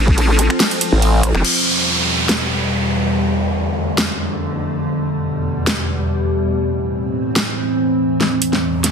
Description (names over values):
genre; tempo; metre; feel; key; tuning
heavy wobble dubstep; 142 BPM; 4/4; swing 53% on 16ths, half-time; E phrygian; A4 = 440 Hz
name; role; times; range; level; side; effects
evolving wavetable pad; sustained chords; 0.0-8.9 s; E2 to A4; -18 LUFS; equal; chorus, built-in reverb, sidechain pumping
vowel-sweep wobble bass; bass; 0.0-1.4 s; F1 to A1; -15 LUFS; equal; chorus, overdrive
dubstep drum kit; drums; 0.2-8.9 s; crash cymbal, finger snaps, hi-hat, ride cymbal, snare drum; -19 LUFS; equal; none
growl bass; bass; 0.9-1.3 s; A1; -13 LUFS; equal; chorus, overdrive
downlifter and riser; sound effects; 1.4-4.8, 8.5-8.9 s; none; -21 LUFS; right 1 dB; none
room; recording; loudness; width
moderate digital room reverb, RT60 1.2 s; dense, heavily limited modern master; -15 LUFS; side -6 dB against mid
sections
0.0-1.4 A section; 1.4-8.2 B section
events
drop 0.0-1.4; band accent 1.2; drum fill 8.2-8.9; riser 8.5-8.9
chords
0.0 F; 1.4 Em; 3.1 Dm/F; 4.8 Em; 6.5 Am; 8.2 Em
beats
0.18 0.60 1.02 | 1.45 1.87 2.29 2.71 | 3.14 3.56 3.98 4.40 | 4.83 5.25 5.67 6.09 | 6.52 6.94 7.36 7.78 | 8.21 8.63